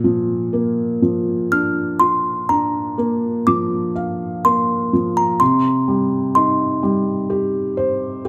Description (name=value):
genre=children's music, lullaby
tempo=62 BPM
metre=4/4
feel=rubato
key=unclear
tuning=A4 = 441 Hz
part: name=felt-muted upright piano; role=accompaniment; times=0.0-8.3 s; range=Bb2 to F5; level=-21 LUFS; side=equal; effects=none
part: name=music box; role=melody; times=1.5-7.3 s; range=Bb5 to F6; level=-21 LUFS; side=equal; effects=none
room=light reverb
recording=close, detailed microphones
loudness=-19 LUFS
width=mono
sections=0.0-8.3 A section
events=none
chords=0.0 Bb; 5.4 Cm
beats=0.53 | 1.51 2.49 3.47 4.45 | 5.41 6.36 7.31 8.25